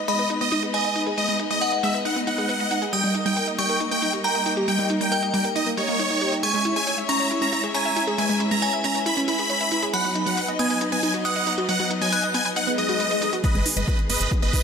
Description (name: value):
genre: uplifting trance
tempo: 137 BPM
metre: 4/4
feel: straight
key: G# minor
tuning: A4 = 441 Hz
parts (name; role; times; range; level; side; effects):
- rich symphonic string section; sustained chords; 0.0-14.6 s; D#3 to E5; -28 LUFS; left 2 dB; sidechain pumping
- wide unison pluck; arpeggios; 0.0-14.6 s; F#3 to E5; -26 LUFS; right 1 dB; sidechain pumping, tape echo
- big supersaw lead; melody; 0.1-14.6 s; B4 to B5; -24 LUFS; equal; phaser, sidechain pumping, ping-pong delay
- glassy synth bell; second line; 0.1-13.4 s; F#5 to F#6; -28 LUFS; equal; chorus, phaser, tape echo
- electronic hi-hat; drums; 0.1-14.6 s; none; -32 LUFS; right 1 dB; sidechain pumping on hats, low-pass filter on hats, low-pass filter on room
- swell and riser; sound effects; 12.7-14.6 s; none; -31 LUFS; left 7 dB; none
- electronic kick drum; drums; 13.4-14.6 s; none; -22 LUFS; equal; none
- tight sequencer bass; bass; 13.5-14.5 s; G#1; -28 LUFS; equal; sidechain pumping
room: moderate huge ambient reverb, RT60 4.9 s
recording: none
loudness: -20 LUFS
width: side -6 dB against mid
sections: 0.0-13.4 A section; 13.4-14.6 B section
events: filter sweep on synth pluck 0.0-13.4, 13.4-14.6; swell 12.7-13.4; build-up 13.4-14.6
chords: 0.0 G#m; 2.9 D#; 6.4 C#m; 9.9 B; 13.4 G#m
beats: 0.30 0.74 | 1.18 1.61 2.05 2.49 | 2.93 3.37 3.80 4.24 | 4.68 5.12 5.56 5.99 | 6.43 6.87 7.31 7.75 | 8.18 8.62 9.06 9.50 | 9.94 10.37 10.81 11.25 | 11.69 12.12 12.56 13.00 | 13.44 13.88 14.31